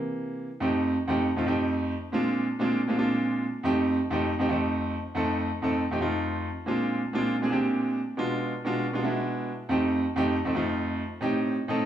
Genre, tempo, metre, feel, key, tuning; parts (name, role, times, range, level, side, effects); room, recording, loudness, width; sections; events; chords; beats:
jazz; 158 BPM; 4/4; straight; F mixolydian; A4 = 440 Hz
clear concert grand piano; solo; 0.0-11.9 s; F2 to Eb5; -25 LUFS; right 1 dB
wet stone room reverb, RT60 1.3 s; band playing live in one room, small room ambience; -25 LUFS; side -10 dB against mid
0.5-11.9 A section
grand piano fill 11.5-11.9
0.0 C7; 0.5 F9; 2.0 Bb9; 3.5 F9; 6.6 Bb9; 8.1 Bdim7; 9.6 F9; 11.1 Am7b5
0.14 | 0.52 0.90 1.27 1.65 | 2.03 2.41 2.79 3.17 | 3.55 3.93 4.30 4.68 | 5.06 5.44 5.82 6.20 | 6.58 6.96 7.33 7.71 | 8.09 8.47 8.85 9.23 | 9.61 9.99 10.37 10.74 | 11.12 11.50